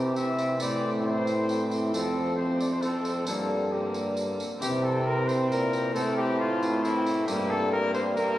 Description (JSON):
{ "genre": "classical, renaissance-style consort dance", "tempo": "135 BPM", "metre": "3/4", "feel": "straight", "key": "unclear", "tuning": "A4 = 436 Hz", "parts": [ { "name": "mellow cornet", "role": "melody", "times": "0.0-8.4 s", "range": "E4 to E5", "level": "-30 LUFS", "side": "left 2 dB", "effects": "none" }, { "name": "warm viola", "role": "second line", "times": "0.0-8.4 s", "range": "Bb3 to C4", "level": "-32 LUFS", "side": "right 2 dB", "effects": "none" }, { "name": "concert harp", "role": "accompaniment", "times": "0.0-8.4 s", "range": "F2 to E5", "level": "-37 LUFS", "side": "left 1 dB", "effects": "none" }, { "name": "warm bassoon", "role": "accompaniment", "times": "0.0-8.4 s", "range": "D3 to G3", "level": "-34 LUFS", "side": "left 1 dB", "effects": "none" }, { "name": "warm trombone", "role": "bass", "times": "0.0-8.4 s", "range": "F2 to C3", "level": "-29 LUFS", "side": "right 1 dB", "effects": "none" }, { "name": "tambourine", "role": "percussion", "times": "0.2-8.4 s", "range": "none", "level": "-41 LUFS", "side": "right 1 dB", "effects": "none" } ], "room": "wet cathedral reverb, RT60 5.8 s", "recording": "recorded on a phone in the room, club reverb", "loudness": "-24 LUFS", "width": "side -14 dB against mid", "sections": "0.0-4.6 A section; 4.6-8.4 A section", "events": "none", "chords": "0.0 C; 0.6 Am; 1.9 F; 3.3 Gm; 4.6 C; 6.0 Am; 7.3 Gm" }